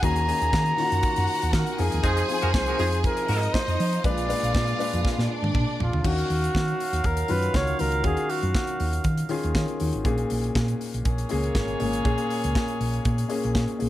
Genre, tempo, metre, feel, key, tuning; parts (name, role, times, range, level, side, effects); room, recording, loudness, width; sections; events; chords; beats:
disco; 120 BPM; 4/4; straight; Eb minor from 6.0 s; A4 = 441 Hz
breathy flugelhorn; melody; 0.0-9.1 s; F4 to Bb5; -27 LUFS; right 1 dB
clear studio string section; second line; 0.0-6.0 s; D4 to Ab5; -30 LUFS; right 1 dB
warm grand piano; accompaniment; 0.0-13.9 s; Bb2 to F5; -30 LUFS; left 4 dB
hollow-body short-scale fingered electric bass; bass; 0.0-13.9 s; Ab1 to F3; -26 LUFS; equal
modern studio drum kit; drums; 0.0-13.9 s; crash cymbal, hi-hat, kick drum, snare drum, toms; -28 LUFS; equal
clear horn section; stabs; 2.0-13.8 s; F3 to F5; -32 LUFS; right 1 dB; slapback echo
small room ambience; -22 LUFS; side -14 dB against mid
0.0-6.0 A section; 6.0-13.9 B section
drum fill 5.0-6.0
0.0 Ebm7; 1.8 Fm7; 4.0 Bb7b9; 6.0 Ebm9; 10.1 Bbm7
| 0.03 0.53 1.03 1.53 | 2.04 2.54 3.04 3.54 | 4.04 4.54 5.04 5.54 | 6.04 6.54 7.04 7.54 | 8.04 8.55 9.05 9.55 | 10.05 10.55 11.05 11.55 | 12.05 12.56 13.06 13.56